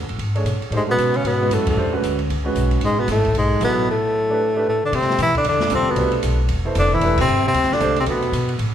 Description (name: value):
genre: modal jazz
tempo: 229 BPM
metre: 4/4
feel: swing 60% on 8ths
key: A major, C major from 4.9 s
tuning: A4 = 440 Hz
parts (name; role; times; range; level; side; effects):
- upright bass; bass; 0.0-8.7 s; E1 to C3; -23 LUFS; equal; none
- open jazz drum kit; drums; 0.1-8.7 s; crash cymbal, hi-hat, kick drum, ride cymbal, snare drum; -29 LUFS; right 1 dB; none
- warm grand piano; accompaniment; 0.4-8.2 s; B2 to C#5; -25 LUFS; right 3 dB; none
- warm bass clarinet; second line; 0.7-8.6 s; G#2 to E3; -26 LUFS; left 2 dB; none
- breathy tenor saxophone; melody; 0.8-8.6 s; G#3 to E4; -20 LUFS; equal; none
room: moderate scoring stage reverb, RT60 1.6 s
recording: recorded in a church or concert hall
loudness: -17 LUFS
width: side -10 dB against mid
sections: 0.0-4.9 A section; 4.9-8.7 B section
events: band accent 1.6, 7.2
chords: 0.0 Amaj9; 3.9 Gadd9; 4.9 Cmaj9